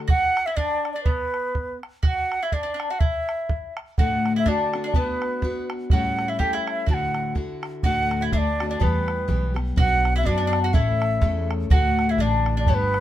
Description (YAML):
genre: celtic folk, Celtic polka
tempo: 124 BPM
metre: 2/4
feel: swing 58% on 8ths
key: D major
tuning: A4 = 442 Hz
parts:
  - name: picked steel-string acoustic guitar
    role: accompaniment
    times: 0.0-0.1, 4.0-13.0 s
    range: D2 to B4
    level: -27 LUFS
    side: left 3 dB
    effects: none
  - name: wooden flute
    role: melody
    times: 0.1-13.0 s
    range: B4 to A5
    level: -25 LUFS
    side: right 2 dB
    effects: none
  - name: mandolin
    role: second line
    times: 0.1-13.0 s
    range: B3 to G4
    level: -30 LUFS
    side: left 2 dB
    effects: none
  - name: bodhran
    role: percussion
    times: 0.1-13.0 s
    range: none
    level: -23 LUFS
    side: right 1 dB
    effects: none
  - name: upright bass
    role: bass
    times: 7.8-13.0 s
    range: G1 to F#2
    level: -24 LUFS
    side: equal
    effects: none
room: light reverb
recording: minimal, uncompressed stereo recording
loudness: -20 LUFS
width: side -12 dB against mid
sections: 0.1-7.8 A section; 7.8-13.0 A section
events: none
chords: 0.1 N.C.; 4.0 D; 4.9 Bm; 5.9 A7; 6.9 Dadd9; 7.8 D; 8.8 Em; 9.8 Bm; 10.7 A; 11.7 D